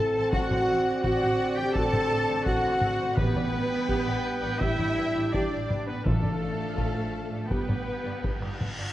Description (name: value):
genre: cinematic, epic orchestral film score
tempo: 84 BPM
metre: 4/4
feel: straight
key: unclear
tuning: A4 = 440 Hz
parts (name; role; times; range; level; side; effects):
- rich symphonic violin section; melody; 0.0-8.6 s; A4 to A5; -38 LUFS; left 4 dB; none
- rich studio violin section; second line; 0.0-8.6 s; A4 to A5; -38 LUFS; left 2 dB; none
- dark symphonic viola section; accompaniment; 0.0-8.9 s; F4 to G5; -36 LUFS; right 1 dB; none
- dark French horn section; sustained chords; 0.0-8.6 s; A3 to A4; -30 LUFS; equal; none
- warm trombone section; sustained chords; 0.0-8.6 s; D3 to D4; -35 LUFS; equal; none
- bright trumpet; stabs; 0.0-8.6 s; A4 to A5; -34 LUFS; right 1 dB; none
- clear symphonic cello section; bass; 0.0-8.6 s; A3 to A4; -35 LUFS; right 1 dB; none
- rich studio double bass section; bass; 0.0-8.8 s; G1 to A1; -34 LUFS; right 2 dB; none
- solo taiko drums; drums; 0.3-8.9 s; none; -32 LUFS; equal; none
- timpani; percussion; 3.2-7.1 s; A2; -31 LUFS; left 1 dB; none
- reverse cymbal; sound effects; 8.3-8.9 s; none; -40 LUFS; equal; none
room: moderate scoring stage reverb, RT60 1.9 s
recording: worn, warbling old tape, cassette tape, warbly pitch drift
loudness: -24 LUFS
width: side -14 dB against mid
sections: 0.0-8.9 A section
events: reverse cymbal 8.3-8.9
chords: 0.3 D7/A; 3.2 G/A; 6.1 Dm/A; 7.5 G